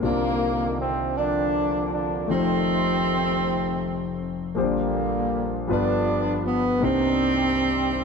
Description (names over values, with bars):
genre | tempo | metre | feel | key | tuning
gospel | 53 BPM (dotted quarters) | 6/8 | straight | unclear | A4 = 442 Hz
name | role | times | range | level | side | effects
mellow horn section | melody | 0.0-8.0 s | C3 to D4 | -23 LUFS | right 2 dB | tape echo
clear concert grand piano | accompaniment | 0.0-8.0 s | F1 to D5 | -25 LUFS | left 3 dB | none
room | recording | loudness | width
light reverb | dark, warm production | -21 LUFS | side -5 dB against mid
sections
0.0-8.0 A section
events
none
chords
0.0 Cm11; 2.3 F7; 4.6 Bb69; 5.7 G7; 6.8 Cm9